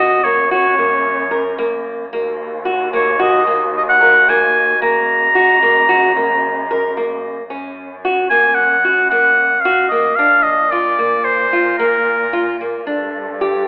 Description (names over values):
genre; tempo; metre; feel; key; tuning
contemporary instrumental, chamber music in an uneven meter; 112 BPM; 5/4; straight; unclear; A4 = 440 Hz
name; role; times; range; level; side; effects
clear oboe; melody; 0.0-12.6 s; Bb4 to Bb5; -15 LUFS; equal; none
nylon-string guitar; arpeggios; 0.0-13.6 s; Bb3 to Bb4; -20 LUFS; equal; none
warm cello; bass; 0.0-13.7 s; Eb2 to Bb2; -30 LUFS; equal; none
warm woodwind section; sustained chords; 2.1-7.5, 12.9-13.7 s; Eb3 to A4; -29 LUFS; equal; none
room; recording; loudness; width
wet recital hall reverb, RT60 1.5 s; telephone sound; -15 LUFS; mono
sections
0.0-7.5 A section; 7.5-13.7 B section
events
none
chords
0.0 Gb; 2.1 Ebm; 4.8 Gbadd9; 7.5 Gb; 10.2 Bb; 12.9 Gsus2